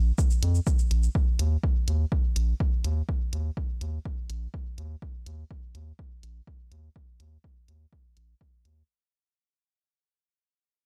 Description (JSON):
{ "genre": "dub techno", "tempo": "124 BPM", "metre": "4/4", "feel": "straight", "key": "unclear", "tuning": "A4 = 441 Hz", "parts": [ { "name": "round analog bass", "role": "bass", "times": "0.0-8.8 s", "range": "Bb1 to F2", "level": "-28 LUFS", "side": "equal", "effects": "transformer saturation, sidechain pumping" }, { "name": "electronic kick drum", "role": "drums", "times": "0.2-8.5 s", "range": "none", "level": "-29 LUFS", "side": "equal", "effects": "studio reverb" }, { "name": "electronic shaker and hi-hat", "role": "drums", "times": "0.2-8.7 s", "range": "none", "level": "-40 LUFS", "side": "equal", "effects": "studio reverb" } ], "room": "little or no reverb", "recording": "dry, gritty hardware recording", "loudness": "-27 LUFS", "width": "mono", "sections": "0.0-8.9 A section", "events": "fade-out 0.0-8.9", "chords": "none", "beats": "0.18 0.67 | 1.15 1.64 2.12 2.60 | 3.09 3.57 4.05 4.54 | 5.02 5.51 5.99 6.47 | 6.96 7.44 7.92 8.41" }